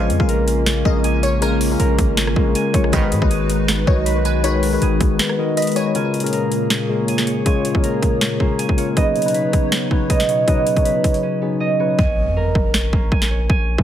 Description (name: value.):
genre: hip hop, trap.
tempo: 159 BPM.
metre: 4/4.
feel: half-time.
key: Bb phrygian.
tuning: A4 = 439 Hz.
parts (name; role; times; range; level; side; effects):
glassy wavetable pluck; second line; 0.0-5.9 s; Bb4 to F5; -27 LUFS; left 2 dB; chorus, ping-pong delay.
mellow tine electric piano; accompaniment; 0.0-12.0 s; Db3 to Db5; -21 LUFS; left 4 dB; analog chorus, low-pass filter.
hollow soft pad; sustained chords; 0.1-12.0 s; Bb2 to Db5; -26 LUFS; right 1 dB; ensemble chorus.
concert harp; arpeggios; 0.0-13.8 s; Ab3 to Cb6; -22 LUFS; right 4 dB; low-pass filter, ping-pong delay.
clear brass ensemble; stabs; 0.0-0.2, 2.9-3.2 s; Cb2 to F3; -27 LUFS; right 3 dB; none.
hard-hitting 808-style bass; bass; 0.0-5.2, 12.0-13.8 s; Ab1 to Bb2; -20 LUFS; equal; none.
trap drum kit; drums; 0.1-13.8 s; hi-hat, kick drum, rim click, snare drum; -19 LUFS; equal; overdrive.
impact; sound effects; 12.0-13.5 s; none; -27 LUFS; equal; none.
room: light reverb.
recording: heavily compressed radio sound.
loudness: -15 LUFS.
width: side -10 dB against mid.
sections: 0.0-5.9 A section; 5.9-12.0 B section; 12.0-13.8 C section.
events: kick muted 5.2-5.9; break 11.2-12.0; hi-hats muted 12.0-13.8; impact 12.0-13.5.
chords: 0.0 Bbm7; 2.9 Abm7; 5.9 Bbm7; 9.0 Badd9; 12.0 Bbm7.